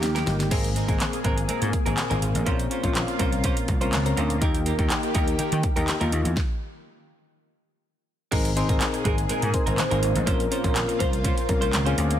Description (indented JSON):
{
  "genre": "dance-pop",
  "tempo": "123 BPM",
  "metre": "4/4",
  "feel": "straight",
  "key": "unclear",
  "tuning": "A4 = 440 Hz",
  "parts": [
    { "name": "warm velvety synth lead", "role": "melody", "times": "0.0-0.2, 9.1-12.0 s", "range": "G4 to C5", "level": "-29 LUFS", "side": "equal", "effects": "chorus, tape echo" },
    { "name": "soft electric-piano-like synth keys", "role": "accompaniment", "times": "0.0-12.2 s", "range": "Bb3 to C5", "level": "-30 LUFS", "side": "left 5 dB", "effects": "chorus, sidechain pumping" },
    { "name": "lush unison pad", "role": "sustained chords", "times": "0.0-12.2 s", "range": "Bb2 to Ab4", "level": "-31 LUFS", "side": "equal", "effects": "chorus, phaser, sidechain pumping" },
    { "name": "direct-recorded clean electric guitar", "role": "riff", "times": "0.0-12.1 s", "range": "Ab3 to C5", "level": "-32 LUFS", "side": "right 5 dB", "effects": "lush chorus" },
    { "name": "vintage slap bass", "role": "bass", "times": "0.0-12.2 s", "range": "G1 to Eb3", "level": "-26 LUFS", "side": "equal", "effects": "sidechain pumping" },
    { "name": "pop drum kit", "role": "drums", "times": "0.0-12.2 s", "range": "crash cymbal, handclaps, hi-hat, kick drum, snare drum", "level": "-26 LUFS", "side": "equal", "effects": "none" }
  ],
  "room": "little or no reverb",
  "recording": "none",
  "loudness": "-21 LUFS",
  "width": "side -10 dB against mid",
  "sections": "0.5-8.3 A section; 8.3-12.2 B section",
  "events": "drum fill 0.0-0.5; stop 6.4-8.3",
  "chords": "0.0 Eb; 0.5 Abadd9; 2.5 Bbmadd9; 4.4 Eb; 6.4 N.C.; 8.3 Abadd9; 10.3 Bbmadd9"
}